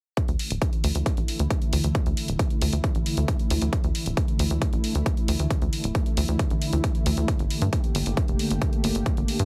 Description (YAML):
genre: uplifting trance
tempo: 135 BPM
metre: 4/4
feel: straight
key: unclear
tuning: A4 = 440 Hz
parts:
  - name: electronic hi-hat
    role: drums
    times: 0.2-9.4 s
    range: none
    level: -35 LUFS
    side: equal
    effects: none
  - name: electronic kick drum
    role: drums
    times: 0.2-9.1 s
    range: none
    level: -27 LUFS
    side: equal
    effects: none
  - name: tight sequencer bass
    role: bass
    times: 0.3-9.4 s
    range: D1 to G2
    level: -28 LUFS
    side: equal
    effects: sidechain pumping
room: digital ambience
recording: heavily compressed radio sound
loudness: -25 LUFS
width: mono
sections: 0.2-9.4 A section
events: none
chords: none